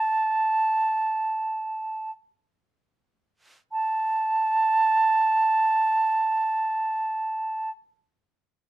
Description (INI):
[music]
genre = classical, free, expressive piece for unaccompanied flute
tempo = free time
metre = none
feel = none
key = unclear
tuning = A4 = 440 Hz
[part]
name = concert flute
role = solo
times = 0.0-7.7 s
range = A5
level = -21 LUFS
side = right 2 dB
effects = none
[sound]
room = little or no reverb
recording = none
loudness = -22 LUFS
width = side -17 dB against mid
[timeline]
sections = 0.0-3.7 A section; 3.7-8.7 B section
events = slowing down 0.0-3.7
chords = none